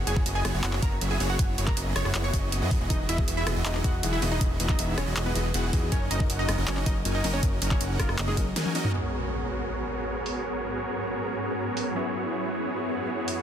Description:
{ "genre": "future bass", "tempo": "159 BPM", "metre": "4/4", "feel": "half-time", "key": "G# minor", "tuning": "A4 = 441 Hz", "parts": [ { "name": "wide unison pluck", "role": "melody", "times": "0.0-8.9 s", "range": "G#3 to C#6", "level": "-34 LUFS", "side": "right 1 dB", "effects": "sidechain pumping, ping-pong delay" }, { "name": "supersaw chords", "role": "riff", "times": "0.0-13.4 s", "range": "B3 to G#5", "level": "-31 LUFS", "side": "right 1 dB", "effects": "sidechain pumping, low-pass filter, dub echo" }, { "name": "fat analog bass", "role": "bass", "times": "0.0-8.5 s", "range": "E1 to F#2", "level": "-29 LUFS", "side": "equal", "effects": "tube saturation, sidechain pumping" }, { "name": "dubstep drum kit", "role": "drums", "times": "0.1-13.4 s", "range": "handclaps, hi-hat, rim click, snare drum, toms", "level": "-33 LUFS", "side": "equal", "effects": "overdrive, low-pass filter on snare, low-pass filter on hats, low-pass filter on cymbals, low-pass filter on toms, low-pass filter on room" }, { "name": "electronic kick drum", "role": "drums", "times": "0.2-8.4 s", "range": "none", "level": "-26 LUFS", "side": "equal", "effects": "overdrive" }, { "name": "felt-muted upright piano", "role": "accompaniment", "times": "2.9-13.4 s", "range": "F#3 to A#4", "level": "-38 LUFS", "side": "left 5 dB", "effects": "sidechain pumping, dub echo" }, { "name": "shimmering ambient pad", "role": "sustained chords", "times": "10.3-13.4 s", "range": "F#2 to A#4", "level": "-34 LUFS", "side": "equal", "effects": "chorus, built-in reverb, sidechain pumping" }, { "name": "impact", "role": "sound effects", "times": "8.9-10.4 s", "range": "none", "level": "-36 LUFS", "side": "equal", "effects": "none" } ], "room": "little or no reverb", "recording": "dense, heavily limited modern master", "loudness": "-25 LUFS", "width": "side -9 dB against mid", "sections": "0.0-8.9 A section; 8.9-13.4 B section", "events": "drop 0.0-8.9; drum fill 8.6-8.9; impact 8.9-10.4; filter sweep on drum 8.9-13.4", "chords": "0.0 F#9sus4; 2.9 Emaj9; 5.9 D#m7/F#; 8.9 G#m11; 12.0 F#9sus4" }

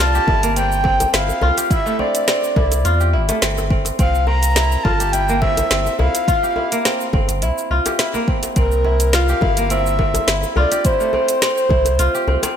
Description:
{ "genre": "organic downtempo", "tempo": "105 BPM", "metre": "4/4", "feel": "swing 54% on 16ths", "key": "C mixolydian", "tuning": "A4 = 440 Hz", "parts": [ { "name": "breathy flute-like synth lead", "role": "melody", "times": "0.0-12.6 s", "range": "Bb4 to Bb5", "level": "-20 LUFS", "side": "equal", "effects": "chorus, ping-pong delay" }, { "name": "kora", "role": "arpeggios", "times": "0.0-12.6 s", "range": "A3 to G4", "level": "-21 LUFS", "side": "equal", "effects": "ping-pong delay" }, { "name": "warm sub bass", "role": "bass", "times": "0.0-12.4 s", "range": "G1 to E2", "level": "-19 LUFS", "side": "equal", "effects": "none" }, { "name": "afro-pop drum kit", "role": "drums", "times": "0.0-12.5 s", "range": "hi-hat, shaker, snare drum", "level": "-22 LUFS", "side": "right 1 dB", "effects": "none" }, { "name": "electronic kick drum", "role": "drums", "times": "0.3-11.8 s", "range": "none", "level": "-19 LUFS", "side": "equal", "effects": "none" }, { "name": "djembe", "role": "percussion", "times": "0.3-12.5 s", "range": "none", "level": "-27 LUFS", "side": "left 3 dB", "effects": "none" } ], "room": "moderate lush hall reverb, RT60 1.8 s", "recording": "bright 1980s-style digital production", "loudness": "-15 LUFS", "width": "side -8 dB against mid", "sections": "0.0-12.6 A section", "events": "none", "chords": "0.0 C7sus4; 1.7 Fmaj7" }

